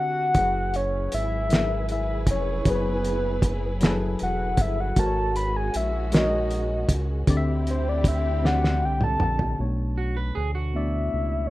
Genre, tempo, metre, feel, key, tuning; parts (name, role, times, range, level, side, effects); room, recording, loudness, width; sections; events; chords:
slow six-eight R&B; 52 BPM (dotted quarters); 6/8; straight; A4 = 439 Hz
soft octave-layered synth lead; melody; 0.0-11.5 s; B4 to B5; -27 LUFS; left 1 dB; chorus
tine electric piano; accompaniment; 0.0-11.5 s; B2 to A5; -30 LUFS; left 2 dB; overdrive
dark symphonic string section; sustained chords; 0.3-9.6 s; D3 to B4; -36 LUFS; right 1 dB
cloth-damped thuddy drum kit; drums; 0.3-9.6 s; hi-hat, kick drum, snare drum, toms; -23 LUFS; equal
round analog bass; bass; 0.4-11.5 s; E1 to D2; -27 LUFS; right 1 dB
electric guitar at the edge of break-up; second line; 10.0-11.5 s; F#4 to B4; -33 LUFS; right 4 dB
moderate studio reverb, RT60 0.5 s; rough home demo mix; -22 LUFS; side -17 dB against mid
0.0-9.6 A section; 9.6-11.5 B section
break 0.0-0.4; soft synth lead solo 0.0-9.6; drum fill 8.4-9.6
0.4 F#9sus4; 5.0 G#9sus4; 7.3 D9sus4; 9.6 Bm9